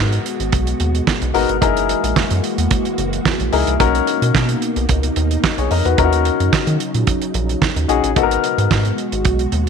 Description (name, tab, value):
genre	early-eighties boogie funk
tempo	110 BPM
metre	4/4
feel	straight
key	G# minor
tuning	A4 = 440 Hz
part	warm baby grand piano	accompaniment	0.0-9.0 s	B3 to D#5	-18 LUFS	left 12 dB	none
part	soft string machine	sustained chords	0.1-9.7 s	B2 to F#4	-23 LUFS	equal	ensemble chorus
part	rubbery square bass	bass	0.0-9.7 s	F#1 to D#3	-19 LUFS	equal	none
part	damped 70s drum kit	drums	0.1-9.7 s	handclaps, hi-hat, kick drum, snare drum	-19 LUFS	right 4 dB	none
room	light reverb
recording	1960s-style stereo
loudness	-15 LUFS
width	side -6 dB against mid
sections	0.0-9.7 A section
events	none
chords	0.0 G#m7; 1.6 F#13; 3.8 Bmaj7; 6.0 D#m7; 8.2 G#m7